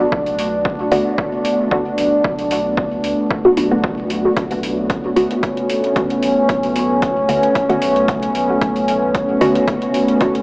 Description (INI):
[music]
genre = dub techno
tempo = 113 BPM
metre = 4/4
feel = swing 54% on 16ths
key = B minor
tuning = A4 = 439 Hz
[part]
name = deep dark ambient pad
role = sustained chords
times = 0.0-10.4 s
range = A3 to D4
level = -16 LUFS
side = equal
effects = chorus, built-in reverb, sidechain pumping
[part]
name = warm sub bass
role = bass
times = 0.0-10.3 s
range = B1 to D2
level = -33 LUFS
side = equal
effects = sidechain pumping
[part]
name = electronic kick drum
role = drums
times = 0.1-10.3 s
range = none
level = -22 LUFS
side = equal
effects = small room ambience
[part]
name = electronic hi-hat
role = drums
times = 0.3-10.4 s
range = none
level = -30 LUFS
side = equal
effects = small room ambience
[part]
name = filtered dub chord stab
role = stabs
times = 0.9-9.5 s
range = D3 to F#4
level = -20 LUFS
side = equal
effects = phaser, sidechain pumping, dub echo
[sound]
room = wet huge ambient reverb, RT60 8.8 s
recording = dreamy mix soaked in reverb, vinyl crackle, AM radio sound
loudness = -14 LUFS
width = side -28 dB against mid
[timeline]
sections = 0.0-10.4 A section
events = filter sweep on synth stab 0.0-10.4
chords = 0.0 Bm7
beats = | 0.12 0.65 1.18 1.71 | 2.24 2.77 3.31 3.84 | 4.37 4.90 5.43 5.96 | 6.49 7.02 7.55 8.08 | 8.62 9.15 9.68 10.21